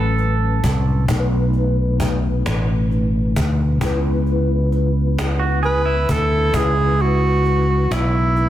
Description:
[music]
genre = slow six-eight R&B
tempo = 44 BPM (dotted quarters)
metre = 6/8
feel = straight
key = unclear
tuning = A4 = 440 Hz
[part]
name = electric guitar through a small old amp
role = second line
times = 0.0-1.0, 5.4-7.2 s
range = E4 to A4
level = -25 LUFS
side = right 6 dB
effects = slapback echo
[part]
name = mellow tine electric piano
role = accompaniment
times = 0.0-8.5 s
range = A2 to B4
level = -23 LUFS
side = left 2 dB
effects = ensemble chorus
[part]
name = sustaining fretless electric bass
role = bass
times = 0.0-8.5 s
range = A1 to D2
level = -18 LUFS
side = equal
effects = none
[part]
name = cajon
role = drums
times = 0.2-8.5 s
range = none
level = -26 LUFS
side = equal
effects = none
[part]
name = breathy tenor saxophone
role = melody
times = 5.7-8.5 s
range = E4 to B4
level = -19 LUFS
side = right 1 dB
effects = slapback echo
[sound]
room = light reverb, small room ambience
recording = dense, heavily limited modern master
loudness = -16 LUFS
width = side -12 dB against mid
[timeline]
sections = 0.0-8.5 A section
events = none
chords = 0.0 A69; 1.1 B7; 3.8 C#m7

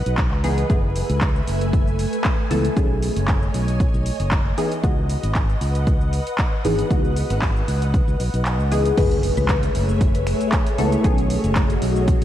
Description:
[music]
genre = deep house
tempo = 116 BPM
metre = 4/4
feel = swing 54% on 16ths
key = unclear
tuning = A4 = 439 Hz
[part]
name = soft string machine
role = sustained chords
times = 0.0-12.2 s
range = A3 to G#5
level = -26 LUFS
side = equal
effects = ensemble chorus, sidechain pumping
[part]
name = filtered dub chord stab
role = stabs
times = 0.0-12.2 s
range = D#3 to A4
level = -25 LUFS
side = left 1 dB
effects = phaser, wide subtle chorus, cassette tape, sidechain pumping, diffuse ambient delay
[part]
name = modern bright fingered electric bass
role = bass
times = 0.1-12.2 s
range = F#1 to C#2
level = -22 LUFS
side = equal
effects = sidechain pumping
[part]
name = punchy analog drum machine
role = drums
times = 0.1-12.2 s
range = crash cymbal, finger snaps, handclaps, hi-hat, shaker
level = -29 LUFS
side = equal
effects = vintage 12-bit sampler grit
[part]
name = electronic kick drum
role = drums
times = 0.2-12.2 s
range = none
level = -20 LUFS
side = equal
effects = vintage 12-bit sampler grit
[part]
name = mallet-like synth pluck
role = melody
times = 9.0-9.7 s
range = B4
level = -30 LUFS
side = left 4 dB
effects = analog chorus, ping-pong delay
[part]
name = impact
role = sound effects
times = 9.0-11.0 s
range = none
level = -30 LUFS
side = equal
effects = none
[sound]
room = moderate lush hall reverb, RT60 2.7 s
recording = dreamy mix soaked in reverb, vinyl crackle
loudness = -18 LUFS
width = side -12 dB against mid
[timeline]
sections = 0.0-9.0 A section; 9.0-12.2 B section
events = kick drops out 8.5-9.0; drop 9.0-12.2; impact 9.0-11.0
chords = 0.0 C#m11; 0.7 F#m11; 2.8 B13; 4.6 C#m11; 9.0 F#m11; 11.0 B13

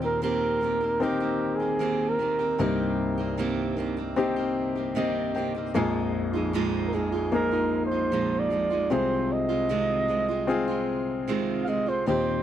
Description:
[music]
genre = pop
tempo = 76 BPM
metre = 4/4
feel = straight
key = unclear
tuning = A4 = 441 Hz
[part]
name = mellow flugelhorn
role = melody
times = 0.0-12.4 s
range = G4 to F5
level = -27 LUFS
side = right 2 dB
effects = none
[part]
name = warm grand piano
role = accompaniment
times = 0.0-12.4 s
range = Bb1 to G5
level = -27 LUFS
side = left 4 dB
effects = none
[part]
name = fingerpicked steel-string acoustic guitar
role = arpeggios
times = 0.0-12.4 s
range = Bb2 to G4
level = -30 LUFS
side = right 6 dB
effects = none
[sound]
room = little or no reverb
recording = dry, close 1970s-style studio recording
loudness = -24 LUFS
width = side -10 dB against mid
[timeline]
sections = 0.0-12.4 A section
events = grand piano fill 4.6-5.7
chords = 0.0 Eb6; 2.6 Cm7; 5.7 Bb7sus4; 8.9 Ab6/C

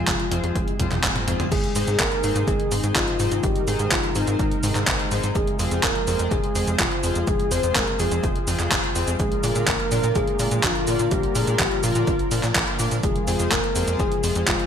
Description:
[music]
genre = italo disco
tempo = 125 BPM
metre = 4/4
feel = straight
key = F dorian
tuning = A4 = 435 Hz
[part]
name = soft octave-layered synth lead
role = melody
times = 0.0-14.7 s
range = Eb4 to C5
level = -26 LUFS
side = left 2 dB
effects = chorus, digital delay
[part]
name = warm analog pad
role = sustained chords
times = 0.0-14.7 s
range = C3 to Bb4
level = -29 LUFS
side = right 1 dB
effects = chorus
[part]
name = chorused polysynth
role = stabs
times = 0.0-14.7 s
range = Ab2 to D5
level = -30 LUFS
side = left 3 dB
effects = none
[part]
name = tight sequencer bass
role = bass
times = 0.0-14.6 s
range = F1 to Bb2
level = -26 LUFS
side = equal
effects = none
[part]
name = electronic kick drum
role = drums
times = 0.1-14.6 s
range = none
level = -28 LUFS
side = equal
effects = none
[part]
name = gated 80s digital drum machine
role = drums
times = 0.1-14.7 s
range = cabasa, crash cymbal, handclaps, hi-hat, toms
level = -25 LUFS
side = equal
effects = gated reverb
[sound]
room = moderate lush hall reverb, RT60 1.8 s, digital ambience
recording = bright 1980s-style digital production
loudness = -20 LUFS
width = side -8 dB against mid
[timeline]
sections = 0.0-1.5 A section; 1.5-14.7 B section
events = drum fill 0.8-1.5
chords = 0.0 Fm; 1.5 Ab; 5.4 Fm; 9.2 Bb; 13.0 Fm

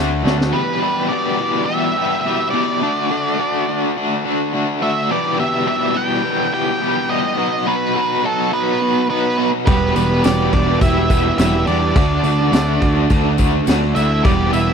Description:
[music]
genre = classic rock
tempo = 105 BPM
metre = 4/4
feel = straight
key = E minor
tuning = A4 = 437 Hz
[part]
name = picked steel-string acoustic guitar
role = accompaniment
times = 0.0-0.5, 9.7-14.7 s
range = E2 to G4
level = -23 LUFS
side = right 14 dB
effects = none
[part]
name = overdriven electric guitar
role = riff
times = 0.0-14.7 s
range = E2 to G4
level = -19 LUFS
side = left 2 dB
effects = tremolo
[part]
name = fuzz picked electric bass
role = bass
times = 0.0-0.5, 9.7-14.7 s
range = E1 to E2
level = -19 LUFS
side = equal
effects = overdrive
[part]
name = vintage drum kit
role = drums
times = 0.3-0.5, 9.7-14.7 s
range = crash cymbal, kick drum, snare drum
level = -19 LUFS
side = equal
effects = none
[part]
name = octave-fuzz lead guitar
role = melody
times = 0.5-14.7 s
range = A4 to G5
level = -21 LUFS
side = right 2 dB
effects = distortion, tape echo
[part]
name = nasal lead guitar with a parked wah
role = second line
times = 8.5-14.7 s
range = B3 to G4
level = -24 LUFS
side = right 4 dB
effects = overdrive
[part]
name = tambourine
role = percussion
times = 9.7-14.7 s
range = none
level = -36 LUFS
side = left 22 dB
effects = none
[sound]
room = light reverb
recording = dry, close 1970s-style studio recording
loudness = -15 LUFS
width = side -6 dB against mid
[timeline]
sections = 0.5-14.7 A section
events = drum fill 0.0-0.5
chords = 0.0 D; 0.5 Em; 2.8 D; 5.1 Em; 7.4 B; 9.7 Em; 12.0 D

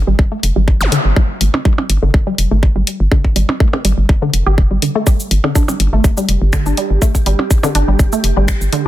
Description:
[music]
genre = minimal techno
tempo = 123 BPM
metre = 4/4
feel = swing 53% on 16ths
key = unclear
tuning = A4 = 443 Hz
[part]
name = hollow knocking FM bass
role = bass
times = 0.0-8.9 s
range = F1 to G1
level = -14 LUFS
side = equal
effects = sidechain pumping
[part]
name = resonant blip pluck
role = riff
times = 0.1-8.8 s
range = D3 to G4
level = -19 LUFS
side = equal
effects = chorus, sidechain pumping, tape echo
[part]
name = electronic kick drum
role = drums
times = 0.2-8.6 s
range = none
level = -13 LUFS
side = equal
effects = none
[part]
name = garage drum kit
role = drums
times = 0.4-8.8 s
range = cabasa, finger snaps, hi-hat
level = -21 LUFS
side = left 2 dB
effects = soft clipping on snare
[part]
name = zap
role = sound effects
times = 0.8-0.9 s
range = none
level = -19 LUFS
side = equal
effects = none
[part]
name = percussion blips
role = percussion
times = 1.5-7.7 s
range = none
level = -19 LUFS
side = right 3 dB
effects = ping-pong delay
[part]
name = swarming drone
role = texture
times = 5.9-8.9 s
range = G4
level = -26 LUFS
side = right 4 dB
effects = built-in reverb, sidechain pumping
[sound]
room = little or no reverb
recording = dense, heavily limited modern master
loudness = -12 LUFS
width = side -14 dB against mid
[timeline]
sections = 0.0-8.9 A section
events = filter sweep on synth arpeggio sound 0.0-8.9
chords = 0.0 G5

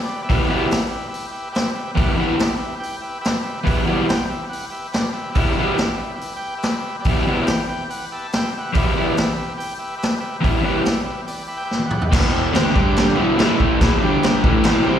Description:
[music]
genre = garage rock duo or trio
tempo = 142 BPM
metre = 4/4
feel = straight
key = E minor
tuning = A4 = 440 Hz
[part]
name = combo organ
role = sustained chords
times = 0.0-15.0 s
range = E4 to B5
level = -27 LUFS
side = equal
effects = spring reverb
[part]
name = raw garage guitar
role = riff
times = 0.3-15.0 s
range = E2 to E4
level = -18 LUFS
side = equal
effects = overdrive, slapback echo
[part]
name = raw garage drum kit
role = drums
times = 0.3-14.7 s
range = crash cymbal, hi-hat, kick drum, snare drum, toms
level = -21 LUFS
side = equal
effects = none
[sound]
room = light reverb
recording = live gig heard through the venue's PA, recital hall reverb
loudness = -18 LUFS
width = side -9 dB against mid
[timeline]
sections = 0.0-12.1 A section; 12.1-15.0 B section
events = transistor combo organ fill 7.9-8.7, 11.3-12.1; drum fill 11.7-12.1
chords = 0.0 Em; 12.8 G5; 13.2 Em; 13.4 A5; 13.8 Em; 14.0 G5; 14.4 Em

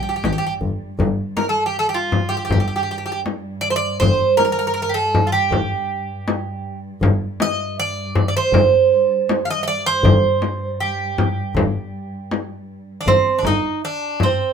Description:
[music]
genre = Turkish makam ensemble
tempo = 80 BPM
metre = 4/4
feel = straight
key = G makam ussak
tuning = A4 = 440 Hz
[part]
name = Greek bouzouki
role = melody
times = 0.0-14.5 s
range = C4 to F5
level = -18 LUFS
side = right 4 dB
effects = none
[part]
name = warm studio cello section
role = drone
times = 0.0-13.1 s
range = G2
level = -31 LUFS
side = equal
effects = none
[part]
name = warm double bass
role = bass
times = 0.2-13.5 s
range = G1 to A1-33c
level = -20 LUFS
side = left 2 dB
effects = none
[part]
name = frame drum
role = percussion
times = 0.2-14.4 s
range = none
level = -20 LUFS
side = left 3 dB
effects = none
[sound]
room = light reverb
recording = band playing live in one room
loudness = -17 LUFS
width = side -7 dB against mid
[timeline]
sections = 1.0-13.1 A section; 13.1-14.5 B section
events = none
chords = none

